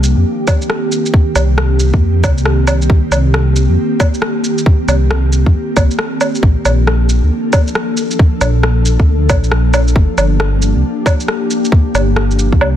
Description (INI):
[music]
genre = future garage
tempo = 136 BPM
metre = 4/4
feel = swing 64% on 16ths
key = C dorian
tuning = A4 = 440 Hz
[part]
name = ethereal airy pad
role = sustained chords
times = 0.0-12.8 s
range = Eb3 to A4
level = -18 LUFS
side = equal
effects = ensemble chorus, built-in reverb, sidechain pumping
[part]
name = dark detuned saw bass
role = bass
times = 0.0-12.8 s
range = G1 to F2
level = -12 LUFS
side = equal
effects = sidechain pumping
[part]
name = electronic shaker, woodblock and rim click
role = drums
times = 0.0-12.7 s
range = none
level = -18 LUFS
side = right 1 dB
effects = small room ambience
[part]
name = electronic kick drum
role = drums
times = 0.5-12.6 s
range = none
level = -11 LUFS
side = equal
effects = small room ambience
[sound]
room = light reverb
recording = dense, heavily limited modern master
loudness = -11 LUFS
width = side -11 dB against mid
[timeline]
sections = 0.0-12.8 A section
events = none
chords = 0.0 Cm7; 6.4 Bbmaj7; 10.0 Gm7